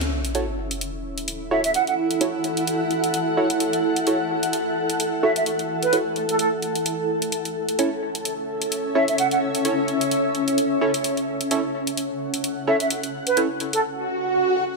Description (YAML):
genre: bass house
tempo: 129 BPM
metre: 4/4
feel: swing 56% on 16ths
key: F# minor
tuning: A4 = 440 Hz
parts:
  - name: electronic hi-hat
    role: drums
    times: 0.0-13.8 s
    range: none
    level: -28 LUFS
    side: left 1 dB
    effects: studio reverb
  - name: sub drop and swell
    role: sound effects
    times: 0.0-1.7, 14.0-14.8 s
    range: none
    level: -25 LUFS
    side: right 2 dB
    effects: none
  - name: granular cloud pad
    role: texture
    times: 0.0-13.8 s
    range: C#4 to F#5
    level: -24 LUFS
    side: equal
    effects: built-in reverb, sidechain pumping
  - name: band-passed chord stab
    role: stabs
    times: 0.3-13.5 s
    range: C#4 to C#5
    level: -26 LUFS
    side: right 2 dB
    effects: chorus, sidechain pumping, ping-pong delay
  - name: mellow hollow silver concert flute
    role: melody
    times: 1.5-1.9, 5.2-9.4, 12.7-13.8 s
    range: A4 to F#5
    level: -23 LUFS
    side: right 3 dB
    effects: ping-pong delay
room: wet lush hall reverb, RT60 1.9 s, digital ambience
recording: none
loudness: -20 LUFS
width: side -2 dB against mid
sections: 0.0-14.8 A section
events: impact 0.0-1.7; swell 14.0-14.8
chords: 0.0 F#m7